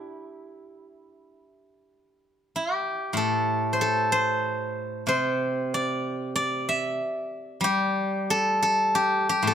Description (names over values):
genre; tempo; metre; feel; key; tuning
chinese traditional, Chinese solo plucked strings; 84-96 BPM; 4/4; rubato; A yu mode; A4 = 437 Hz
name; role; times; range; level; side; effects
steel-string zither; solo; 0.0-9.5 s; A2 to E5; -23 LUFS; equal; none
room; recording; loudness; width
light reverb; close, detailed microphones; -23 LUFS; side -9 dB against mid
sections
0.0-9.5 A section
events
none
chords
none